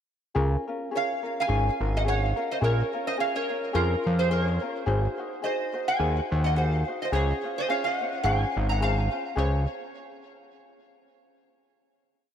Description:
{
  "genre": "Hawaiian",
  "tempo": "107 BPM",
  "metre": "4/4",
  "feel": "swing 57% on 8ths",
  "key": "Db major",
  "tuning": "A4 = 437 Hz",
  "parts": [
    { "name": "ukulele", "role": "accompaniment", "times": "0.3-9.6 s", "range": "Db4 to C5", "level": "-32 LUFS", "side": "left 2 dB", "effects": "none" },
    { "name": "fat analog bass", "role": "bass", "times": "0.4-9.7 s", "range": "Ab1 to F2", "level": "-24 LUFS", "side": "equal", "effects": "none" },
    { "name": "metal-body resonator slide guitar", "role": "melody", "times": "1.0-9.7 s", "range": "F4 to Bb5", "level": "-28 LUFS", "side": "right 1 dB", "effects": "analog chorus, ping-pong delay" }
  ],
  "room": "moderate plate reverb, RT60 3.5 s",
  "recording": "dreamy mix soaked in reverb",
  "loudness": "-24 LUFS",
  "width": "side -9 dB against mid",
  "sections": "0.4-9.4 A section; 9.4-11.6 final chord",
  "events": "none",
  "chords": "0.4 Db6; 2.6 Bbm7; 4.9 Ab7; 7.1 Dbmaj7; 9.4 Db",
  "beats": "| 0.36 0.93 1.49 2.06 | 2.62 3.18 3.75 4.31 | 4.87 5.43 6.00 6.56 | 7.12 7.68 8.24 8.81 | 9.37"
}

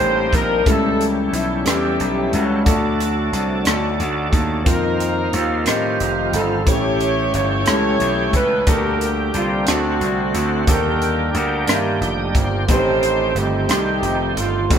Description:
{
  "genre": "slow gospel",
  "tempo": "60 BPM (dotted quarters)",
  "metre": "6/8",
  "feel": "straight",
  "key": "unclear",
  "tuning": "A4 = 440 Hz",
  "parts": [
    { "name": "breathy alto saxophone", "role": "melody", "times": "0.0-14.8 s", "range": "E4 to C#5", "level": "-26 LUFS", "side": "right 4 dB", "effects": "none" },
    { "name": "warm horn section", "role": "melody", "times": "0.0-14.8 s", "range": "A3 to C#5", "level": "-23 LUFS", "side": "left 2 dB", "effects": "tape echo" },
    { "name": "warm concert grand piano", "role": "accompaniment", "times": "0.0-14.8 s", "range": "A2 to F5", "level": "-24 LUFS", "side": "left 2 dB", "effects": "none" },
    { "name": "bright tonewheel organ", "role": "sustained chords", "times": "0.0-14.8 s", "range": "D3 to G5", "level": "-25 LUFS", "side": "right 2 dB", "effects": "slow rotary speaker, overdrive, chorus vibrato" },
    { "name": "gritty slap bass", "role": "bass", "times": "0.0-14.8 s", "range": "F1 to A2", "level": "-22 LUFS", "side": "equal", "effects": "overdrive" },
    { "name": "crisp fusion drum kit", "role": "drums", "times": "0.0-14.8 s", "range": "hi-hat, kick drum, rim click", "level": "-21 LUFS", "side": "equal", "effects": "none" }
  ],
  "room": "moderate stone room reverb, RT60 1.0 s",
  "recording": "band playing live in one room",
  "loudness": "-16 LUFS",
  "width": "side -8 dB against mid",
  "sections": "0.0-14.8 A section",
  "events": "tonewheel organ fill 11.7-12.7",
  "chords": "0.0 Eb6; 0.7 A7; 2.7 D; 4.7 F7sus4; 6.7 A7; 8.7 Gm/D; 9.7 D7; 10.7 Ebmaj7; 12.7 Am7b5",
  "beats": "| 0.66 1.66 | 2.66 3.66 | 4.66 5.66 | 6.66 7.67 | 8.67 9.67 | 10.68 11.68 | 12.69 13.70 | 14.71"
}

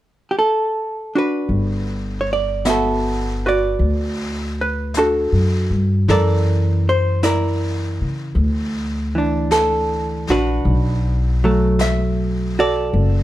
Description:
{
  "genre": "jazz ballad",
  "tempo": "52 BPM",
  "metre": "4/4",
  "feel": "swing 69% on 8ths",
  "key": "G major",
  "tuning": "A4 = 438 Hz",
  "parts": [
    { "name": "hollow-body jazz guitar", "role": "accompaniment", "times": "0.3-13.2 s", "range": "E3 to E5", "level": "-19 LUFS", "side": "right 1 dB", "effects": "none" },
    { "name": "upright bass", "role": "bass", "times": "1.5-13.2 s", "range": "F#1 to C#3", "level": "-19 LUFS", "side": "equal", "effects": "none" },
    { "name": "jazz brush drum kit", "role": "drums", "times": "1.5-13.2 s", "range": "brushed snare drum, hi-hat, snare drum", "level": "-32 LUFS", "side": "left 3 dB", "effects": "none" }
  ],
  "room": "light reverb",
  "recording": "dark, warm production",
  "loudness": "-16 LUFS",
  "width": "side -14 dB against mid",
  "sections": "0.0-1.5 A section; 1.5-13.2 B section",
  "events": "none",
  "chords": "0.0 D6; 1.5 Gmaj9; 6.1 F#7alt; 10.6 Bm7",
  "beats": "0.35 | 1.50 2.65 3.80 4.94 | 6.08 7.23 8.37 9.51 | 10.65 11.79 12.93"
}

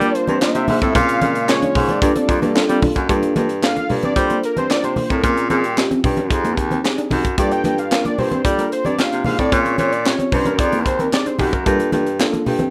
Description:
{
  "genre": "early-eighties boogie funk",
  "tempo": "112 BPM",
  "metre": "4/4",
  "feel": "straight",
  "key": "unclear",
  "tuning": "A4 = 439 Hz",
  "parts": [
    { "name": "fat analog lead", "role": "melody", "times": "0.0-11.8 s", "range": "G4 to G5", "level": "-26 LUFS", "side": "equal", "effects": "none" },
    { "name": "tine electric piano", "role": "accompaniment", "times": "0.0-12.6 s", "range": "A3 to C5", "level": "-26 LUFS", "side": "equal", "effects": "overdrive" },
    { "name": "chorused pulse-width pad", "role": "sustained chords", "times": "0.0-3.1 s", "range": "Db3 to A5", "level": "-30 LUFS", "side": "equal", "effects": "none" },
    { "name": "mellow electric guitar", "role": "riff", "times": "0.0-12.7 s", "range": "G3 to Eb4", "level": "-27 LUFS", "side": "equal", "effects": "analog chorus" },
    { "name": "breathy baritone saxophone", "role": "bass", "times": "0.0-12.7 s", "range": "Eb2 to G3", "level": "-22 LUFS", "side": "equal", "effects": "none" },
    { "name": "tight funk drum kit", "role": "drums", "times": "0.0-12.7 s", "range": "handclaps, hi-hat, kick drum, snare drum", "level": "-24 LUFS", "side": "equal", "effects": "none" },
    { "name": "congas", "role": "percussion", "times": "0.0-12.7 s", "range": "none", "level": "-28 LUFS", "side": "equal", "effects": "none" }
  ],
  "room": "moderate studio reverb, RT60 0.6 s",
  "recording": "rough home demo mix",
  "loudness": "-18 LUFS",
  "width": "mono",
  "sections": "0.0-3.1 A section; 3.1-12.7 B section",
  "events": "analog synth lead solo 3.1-12.7",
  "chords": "0.0 Gm9; 0.9 Bbm9; 2.0 Gm9; 5.2 Bbm9; 6.3 Fm9; 7.4 Gm9; 9.5 Bbm9; 10.6 Fm9; 11.7 Gm9",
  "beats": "0.41 | 0.95 1.49 2.02 2.56 | 3.09 3.63 4.16 4.70 | 5.24 5.77 6.31 6.84 | 7.38 7.91 8.45 8.98 | 9.52 10.06 10.59 11.13 | 11.66 12.20"
}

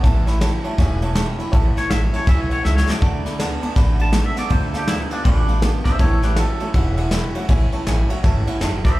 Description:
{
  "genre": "rockabilly",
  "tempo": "161 BPM",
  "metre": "4/4",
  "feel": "swing 62% on 8ths",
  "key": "A major",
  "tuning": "A4 = 439 Hz",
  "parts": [
    { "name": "picked steel-string acoustic guitar", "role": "accompaniment", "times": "0.0-9.0 s", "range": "A2 to F#4", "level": "-29 LUFS", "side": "left 2 dB", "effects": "none" },
    { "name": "warm upright piano", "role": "accompaniment", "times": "0.0-8.9 s", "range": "C#5 to B5", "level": "-30 LUFS", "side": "equal", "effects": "slapback echo" },
    { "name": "electric guitar through a small old amp", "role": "riff", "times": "0.0-9.0 s", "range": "A2 to B3", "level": "-28 LUFS", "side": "right 4 dB", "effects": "spring reverb, slapback echo" },
    { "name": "upright bass", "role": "bass", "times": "0.0-8.9 s", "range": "E1 to D2", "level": "-20 LUFS", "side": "equal", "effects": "none" },
    { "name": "soft brush drum kit", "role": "drums", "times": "0.0-8.9 s", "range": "kick drum, ride cymbal, snare drum", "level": "-21 LUFS", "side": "equal", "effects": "none" },
    { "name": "twangy electric guitar", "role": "melody", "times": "1.8-9.0 s", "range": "D4 to A5", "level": "-26 LUFS", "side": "equal", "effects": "slapback echo, digital delay" }
  ],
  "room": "small room ambience",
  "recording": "live gig heard through the venue's PA, club reverb",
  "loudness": "-16 LUFS",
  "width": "side -17 dB against mid",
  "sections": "0.0-9.0 A section",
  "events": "drum fill 2.6-3.0",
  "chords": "0.0 A; 3.0 D; 4.5 Dm7; 6.0 A",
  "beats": "| 0.04 0.41 0.78 1.16 | 1.53 1.90 2.27 2.65 | 3.02 3.39 3.76 4.14 | 4.51 4.88 5.26 5.63 | 6.00 6.38 6.75 7.12 | 7.50 7.87 8.24 8.62 | 8.99"
}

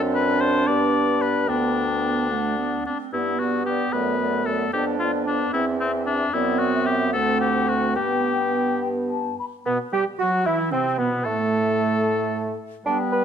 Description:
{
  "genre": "quick classical-period movement for wind quintet",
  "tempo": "75 BPM (dotted quarters)",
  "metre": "6/8",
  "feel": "rubato",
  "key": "G major, E minor from 9.7 s",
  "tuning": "A4 = 438 Hz",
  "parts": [
    { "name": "mellow hollow concert flute", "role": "melody", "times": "0.0-13.2 s", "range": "C4 to B5", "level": "-30 LUFS", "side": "left 11 dB", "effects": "none" },
    { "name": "clear French horn", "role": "accompaniment", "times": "0.0-13.2 s", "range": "A2 to D4", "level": "-28 LUFS", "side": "equal", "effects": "none" },
    { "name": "clear clarinet", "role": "accompaniment", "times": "0.0-13.2 s", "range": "A3 to G4", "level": "-27 LUFS", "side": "right 9 dB", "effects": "none" },
    { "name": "mellow bassoon", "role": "bass", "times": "0.0-13.2 s", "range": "D2 to B4", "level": "-26 LUFS", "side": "right 2 dB", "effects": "none" },
    { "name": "warm oboe", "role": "second line", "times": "0.1-13.2 s", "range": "B3 to D5", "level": "-25 LUFS", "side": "left 4 dB", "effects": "none" }
  ],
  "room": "moderate recital hall reverb, RT60 1.8 s",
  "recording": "close, detailed microphones",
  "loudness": "-20 LUFS",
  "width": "side -8 dB against mid",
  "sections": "0.0-9.7 A section; 9.7-13.2 B section",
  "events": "none",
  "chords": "0.0 D7/F#; 0.7 G; 1.5 G/D; 2.3 D; 3.1 G; 3.9 D/F#; 4.7 G7/F (rootless); 5.5 C/E; 6.3 D7/F#; 7.1 D7; 8.0 G; 9.7 Em/B; 11.3 N.C.",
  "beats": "0.68 | 1.48 2.31 | 3.14 3.93 | 4.74 5.54 | 6.34 7.14 | 7.96 8.82 | 9.66 10.46 | 11.25 12.05 | 12.86"
}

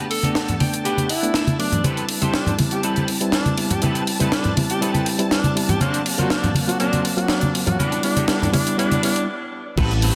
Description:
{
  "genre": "nu-disco, nu disco",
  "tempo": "121 BPM",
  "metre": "4/4",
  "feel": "straight",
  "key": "unclear",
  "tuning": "A4 = 440 Hz",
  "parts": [
    { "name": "reed electric piano", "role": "accompaniment", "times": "0.0-10.1 s", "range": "F#3 to E#5", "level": "-26 LUFS", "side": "equal", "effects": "fast tremolo, sidechain pumping, tape echo" },
    { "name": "rich studio string section", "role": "sustained chords", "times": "0.0-10.2 s", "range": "F#4 to A5", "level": "-36 LUFS", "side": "equal", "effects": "sidechain pumping" },
    { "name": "electric guitar at the edge of break-up", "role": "riff", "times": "0.0-10.2 s", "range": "C4 to G5", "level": "-32 LUFS", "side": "equal", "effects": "ensemble chorus, vintage 12-bit sampler grit, tape echo" },
    { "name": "clear tenor saxophone", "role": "melody", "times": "0.1-9.3 s", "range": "D4 to A4", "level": "-29 LUFS", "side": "equal", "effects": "dub echo" },
    { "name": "tight funk drum kit", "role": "drums", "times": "0.1-10.1 s", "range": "crash cymbal, hi-hat, snare drum", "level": "-27 LUFS", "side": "equal", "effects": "none" },
    { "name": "congas", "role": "percussion", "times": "0.2-9.0 s", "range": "none", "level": "-25 LUFS", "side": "equal", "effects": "none" },
    { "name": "fingered electric bass with an envelope filter", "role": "bass", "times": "9.8-10.1 s", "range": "A1", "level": "-21 LUFS", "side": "equal", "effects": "sidechain pumping" },
    { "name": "electronic kick drum", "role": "drums", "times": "9.8-9.9 s", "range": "none", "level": "-23 LUFS", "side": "equal", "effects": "none" }
  ],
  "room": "moderate plate reverb, RT60 2.5 s",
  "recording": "dense, heavily limited modern master",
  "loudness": "-20 LUFS",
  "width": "mono",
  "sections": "0.0-9.8 A section",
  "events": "build-up 0.0-9.8; clean electric guitar fill 0.4-1.8; stop 9.3-9.8",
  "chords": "0.0 Gmaj7; 1.8 Am9; 5.8 D7alt; 7.8 Gmaj7",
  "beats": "0.36 0.85 1.35 | 1.84 2.34 2.84 3.33 | 3.83 4.32 4.82 5.32 | 5.81 6.31 6.80 7.30 | 7.79 8.29 8.79 9.28 | 9.78"
}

